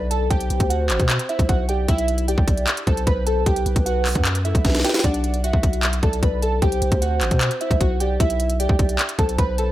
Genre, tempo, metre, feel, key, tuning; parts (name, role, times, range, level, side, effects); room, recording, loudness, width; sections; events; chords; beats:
hip hop, trap; 152 BPM; 4/4; half-time; A4 = 440 Hz
glassy digital keys; melody; 0.0-9.7 s; D4 to B5; -25 LUFS; equal; chorus, low-pass filter, digital delay
hollow clarinet-like synth lead; second line; 0.0-9.7 s; A4 to F#5; -28 LUFS; right 2 dB; chorus, digital delay
long sustained 808-style bass; bass; 0.0-9.7 s; A1 to B2; -22 LUFS; equal
trap drum kit; drums; 0.1-9.7 s; handclaps, hi-hat, kick drum, snare drum; -20 LUFS; equal
digital ambience; -18 LUFS; side -14 dB against mid
0.0-9.7 A section
drum fill 4.6-5.0
0.3 C; 1.9 Am/B; 3.5 Em/B; 5.0 Bm; 6.6 C; 8.2 Am/B
| 0.31 0.70 1.09 1.49 | 1.88 2.28 2.67 3.07 | 3.46 3.86 4.25 4.65 | 5.04 5.44 5.83 6.23 | 6.62 7.02 7.41 7.81 | 8.20 8.60 8.99 9.38